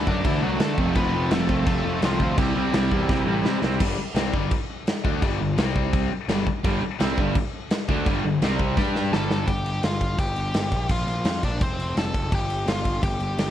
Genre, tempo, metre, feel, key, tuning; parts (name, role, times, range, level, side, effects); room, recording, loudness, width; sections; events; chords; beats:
punk rock; 169 BPM; 4/4; straight; A4 = 440 Hz
smooth overdriven lead guitar; melody; 0.0-3.6, 9.1-13.5 s; E3 to A5; -29 LUFS; left 1 dB; tape echo
crunchy overdriven guitar; riff; 0.0-9.5 s; F2 to G4; -30 LUFS; equal
distorted electric guitar; riff; 0.0-3.8, 6.6-9.5 s; F2 to G4; -28 LUFS; right 8 dB; distortion
tight distorted guitar; riff; 0.0-9.5 s; G2 to G4; -29 LUFS; left 8 dB; distortion
fuzz picked electric bass; bass; 0.0-13.5 s; F1 to D3; -27 LUFS; equal; overdrive
big rock drum kit; drums; 0.1-13.5 s; crash cymbal, kick drum, snare drum; -25 LUFS; equal; vintage 12-bit sampler grit
light reverb; vinyl crackle; -21 LUFS; side -11 dB against mid
0.0-3.8 A section; 3.8-9.5 B section; 9.5-13.5 C section
drum fill 3.1-3.8, 8.8-9.5
0.0 D; 0.8 F; 2.4 C; 3.8 G5; 5.6 C5; 6.1 G5; 8.4 C5; 8.8 G5; 9.5 Fsus2/G; 10.7 Bb; 11.6 F; 12.3 Fsus2/G
0.25 0.60 | 0.96 1.31 1.67 2.02 | 2.38 2.73 3.09 3.44 | 3.80 4.16 4.51 4.87 | 5.22 5.58 5.93 6.29 | 6.64 7.00 7.35 7.71 | 8.06 8.41 8.77 9.12 | 9.48 9.83 10.19 10.54 | 10.90 11.25 11.61 11.96 | 12.32 12.67 13.03 13.38